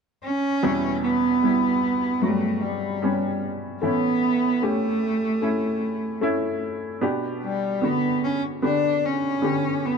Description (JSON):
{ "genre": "pop", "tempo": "75 BPM", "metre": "4/4", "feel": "straight", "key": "unclear", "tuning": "A4 = 442 Hz", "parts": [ { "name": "warm cello", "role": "melody", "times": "0.2-10.0 s", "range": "G3 to D4", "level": "-23 LUFS", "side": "right 1 dB", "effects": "none" }, { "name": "clear upright piano", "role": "accompaniment", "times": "0.6-10.0 s", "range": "E2 to G4", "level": "-25 LUFS", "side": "left 1 dB", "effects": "none" } ], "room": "moderate plate reverb, RT60 2.6 s", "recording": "dark, warm production", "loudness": "-21 LUFS", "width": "side -6 dB against mid", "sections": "0.6-10.0 A section", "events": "none", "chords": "0.0 N.C.; 0.6 Em; 3.8 A; 7.0 G/B", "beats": "| 0.63 1.43 2.23 3.03 | 3.83 4.63 5.43 6.23 | 7.03 7.83 8.63 9.43" }